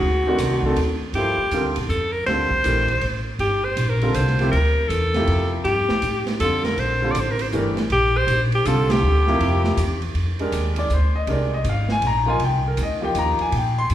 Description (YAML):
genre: modal jazz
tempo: 160 BPM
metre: 3/4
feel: swing 65% on 8ths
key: G dorian, F dorian from 10.2 s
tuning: A4 = 440 Hz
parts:
  - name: bright alto saxophone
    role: melody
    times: 0.0-10.0 s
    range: F#4 to D5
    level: -22 LUFS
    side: equal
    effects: none
  - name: upright bass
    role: bass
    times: 0.0-13.9 s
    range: G1 to Bb2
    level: -22 LUFS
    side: equal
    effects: none
  - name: clear concert grand piano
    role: accompaniment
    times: 0.3-13.9 s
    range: C3 to C6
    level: -24 LUFS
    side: equal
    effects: none
  - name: open jazz drum kit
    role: drums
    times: 0.4-13.9 s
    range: hi-hat, kick drum, ride cymbal, snare drum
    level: -29 LUFS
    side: right 3 dB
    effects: none
room: wet recital hall reverb, RT60 1.6 s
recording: recorded in a church or concert hall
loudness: -18 LUFS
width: side -12 dB against mid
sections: 0.0-1.1 A section; 1.1-10.2 B section; 10.2-13.9 C section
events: band accent 8.8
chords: 0.0 D7b9; 1.1 Gm11; 10.2 F9sus4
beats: | 0.02 0.40 0.77 | 1.15 1.52 1.90 | 2.27 2.65 3.02 | 3.40 3.77 4.15 | 4.53 4.90 5.28 | 5.65 6.03 6.40 | 6.78 7.15 7.53 | 7.90 8.28 8.65 | 9.03 9.40 9.78 | 10.15 10.53 10.90 | 11.28 11.65 12.03 | 12.40 12.78 13.15 | 13.53 13.90